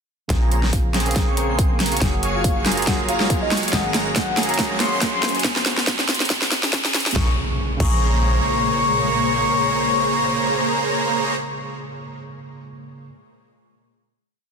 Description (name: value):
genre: future bass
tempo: 140 BPM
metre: 4/4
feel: swing 55% on 16ths, half-time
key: Bb minor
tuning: A4 = 440 Hz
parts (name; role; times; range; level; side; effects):
- soft octave-layered synth lead; melody; 0.3-11.3 s; Eb5 to Db6; -25 LUFS; left 3 dB; chorus, phaser, vintage 12-bit sampler grit, sidechain pumping, dub echo
- barky tine electric piano; accompaniment; 0.3-13.1 s; Db3 to F5; -29 LUFS; right 5 dB; overdrive, sidechain pumping, ping-pong delay
- shimmering ambient pad; sustained chords; 1.5-11.2 s; Bb2 to F5; -32 LUFS; left 1 dB; chorus, built-in reverb, vintage 12-bit sampler grit, sidechain pumping
- airy dreamy lead; arpeggios; 0.3-11.3 s; Ab5 to Db6; -31 LUFS; right 1 dB; chorus, sidechain pumping
- supersaw chords; riff; 0.3-11.3 s; Ab3 to Db6; -25 LUFS; equal; wide subtle chorus, sidechain pumping, low-pass filter
- warm 808-style bass; bass; 0.3-8.4 s; F1 to Bb1; -24 LUFS; equal; sidechain pumping
- big-room dance drum kit; drums; 0.3-7.9 s; crash cymbal, hi-hat, snare drum; -22 LUFS; equal; none
- electronic kick drum; drums; 0.3-7.9 s; none; -23 LUFS; equal; none
- riser and impact; sound effects; 2.6-11.3 s; none; -29 LUFS; equal; none
room: light reverb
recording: dense, heavily limited modern master, high-pass filter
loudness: -17 LUFS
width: side -5 dB against mid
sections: 0.3-7.2 build; 7.2-10.6 final chord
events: build-up 0.3-7.2; drum fill 0.3-7.2; filter sweep on supersaw synth 0.3-5.4; filter sweep on soft synth lead 0.3-5.4; filter sweep 0.3-7.2; riser 2.6-7.2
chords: 0.3 Bbm9; 2.0 Gbmaj9; 3.7 Ab9sus4; 5.4 Fm7; 7.2 Bbm9